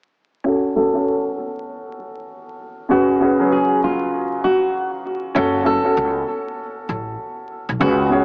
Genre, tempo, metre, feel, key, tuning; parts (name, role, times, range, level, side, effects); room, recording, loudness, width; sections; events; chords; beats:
hip hop, boom-bap hip-hop; 98 BPM; 4/4; swing 61% on 16ths; F# harmonic minor; A4 = 444 Hz
dark upright piano; accompaniment; 0.4-8.2 s; C#3 to C#5; -22 LUFS; equal; cassette tape, high-pass filter, low-pass filter
nylon-string guitar; melody; 0.8-8.2 s; E#4 to A4; -24 LUFS; equal; high-pass filter, low-pass filter, analog delay
upright bass; bass; 5.4-8.2 s; F#1 to C#2; -26 LUFS; equal
moderate spring reverb, RT60 2.4 s; echo-heavy mix, vinyl crackle, small speaker sound; -19 LUFS; mono
0.5-5.4 A section; 5.4-8.2 B section
filter sweep 0.5-5.4
0.5 F#m; 2.9 C#7sus4; 5.4 F#m
| 0.45 1.07 1.68 2.29 | 2.90 3.52 4.13 4.74 | 5.35 5.96 6.58 7.19 | 7.80